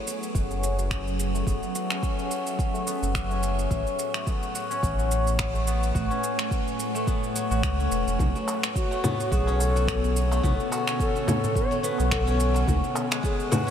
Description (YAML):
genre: organic downtempo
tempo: 107 BPM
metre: 4/4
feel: swing 56% on 16ths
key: unclear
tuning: A4 = 440 Hz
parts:
  - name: ethereal airy pad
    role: sustained chords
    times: 0.0-13.7 s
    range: A2 to E5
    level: -32 LUFS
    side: right 1 dB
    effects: ensemble chorus, built-in reverb, phaser, sidechain pumping
  - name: steel-string zither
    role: arpeggios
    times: 0.0-13.7 s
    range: F#3 to F#4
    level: -30 LUFS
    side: left 3 dB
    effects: low-pass filter, ping-pong delay
  - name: electronic shaker, finger snaps and congas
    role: drums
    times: 0.1-13.7 s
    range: none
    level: -32 LUFS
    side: equal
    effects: overdrive
  - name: warm sub bass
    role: bass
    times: 0.3-12.8 s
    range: E1 to C#2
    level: -26 LUFS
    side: equal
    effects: tube saturation
  - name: electronic kick drum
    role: drums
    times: 0.3-13.4 s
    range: none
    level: -29 LUFS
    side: equal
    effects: overdrive
  - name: darbuka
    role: percussion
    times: 8.5-13.6 s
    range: none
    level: -34 LUFS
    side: left 1 dB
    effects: none
  - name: breathy mellow Native American-style cedar flute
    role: melody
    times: 8.8-13.7 s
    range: F#4 to C#5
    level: -31 LUFS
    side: left 2 dB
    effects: vintage 12-bit sampler grit, ping-pong delay
room: moderate huge ambient reverb, RT60 8.1 s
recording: dreamy mix soaked in reverb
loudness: -23 LUFS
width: side -9 dB against mid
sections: 0.0-13.7 A section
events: filter sweep on guzheng 0.0-13.7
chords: 0.0 F#m7; 3.7 Amaj7; 8.2 Bm7; 12.7 C#m7